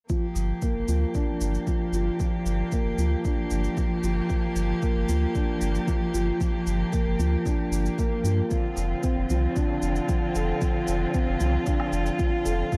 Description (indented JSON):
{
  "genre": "piano and strings electronica",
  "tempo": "114 BPM",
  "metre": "4/4",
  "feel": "straight",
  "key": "G minor",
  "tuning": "A4 = 435 Hz",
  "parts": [
    { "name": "rich string quartet", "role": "sustained chords", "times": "0.1-12.8 s", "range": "C3 to G4", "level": "-34 LUFS", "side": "equal", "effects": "none" },
    { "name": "felt-muted upright piano", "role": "riff", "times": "0.1-12.8 s", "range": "F3 to A4", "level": "-31 LUFS", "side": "equal", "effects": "digital delay" },
    { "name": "electronic kick drum", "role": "drums", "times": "0.1-12.8 s", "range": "none", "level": "-29 LUFS", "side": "equal", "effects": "none" },
    { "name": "shaker and woodblock", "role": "drums", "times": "0.1-12.8 s", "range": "none", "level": "-43 LUFS", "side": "equal", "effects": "none" },
    { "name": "warm sub bass", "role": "bass", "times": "0.4-12.6 s", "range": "F1 to G2", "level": "-28 LUFS", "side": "equal", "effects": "sidechain pumping" }
  ],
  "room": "light reverb",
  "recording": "dark, warm production",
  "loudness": "-26 LUFS",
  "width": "mono",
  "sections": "0.1-12.8 A section",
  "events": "none",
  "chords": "0.1 Gm7; 8.5 Dm7/F"
}